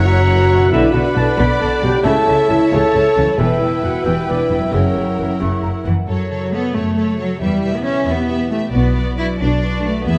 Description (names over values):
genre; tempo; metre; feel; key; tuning
cinematic, heroic adventure film score; 90 BPM (dotted quarters); 6/8; straight; B minor from 6.1 s; A4 = 439 Hz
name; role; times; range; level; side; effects
rich symphonic violin section; melody; 0.0-10.2 s; A#4 to E5; -29 LUFS; equal; none
concert flute; second line; 0.0-6.1 s; F#5 to C#6; -29 LUFS; equal; none
mellow clarinet; second line; 0.0-5.9 s; A#4 to E5; -28 LUFS; equal; none
warm oboe; second line; 0.0-5.8 s; E5 to F#5; -30 LUFS; equal; none
warm symphonic violin section; second line; 0.0-10.2 s; A4 to C#6; -34 LUFS; equal; none
rich symphonic viola section; accompaniment; 0.0-10.2 s; C#3 to A4; -27 LUFS; equal; none
mellow French horn section; sustained chords; 0.0-5.4 s; C#4 to B4; -20 LUFS; equal; none
concert harp; arpeggios; 0.0-10.2 s; E2 to B4; -29 LUFS; equal; none
dark trumpet section; stabs; 0.0-5.4 s; C#5 to B5; -26 LUFS; equal; none
clear symphonic cello section; bass; 0.0-10.2 s; E2 to E4; -23 LUFS; equal; none
rich symphonic double bass section; bass; 0.0-10.2 s; E1 to F#2; -23 LUFS; equal; none
room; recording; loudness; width
moderate scoring stage reverb, RT60 1.6 s; dark, warm production; -16 LUFS; mono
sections
0.0-6.1 A section; 6.1-10.2 B section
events
none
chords
0.0 F#7; 0.7 Bm; 2.0 A/C#; 3.4 Em; 4.7 F#7; 6.1 F#m; 7.4 Em; 8.7 Bm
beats
0.06 | 0.72 1.38 | 2.05 2.72 | 3.39 4.06 | 4.73 5.41 | 6.08 6.75 | 7.41 8.08 | 8.74 9.41 | 10.07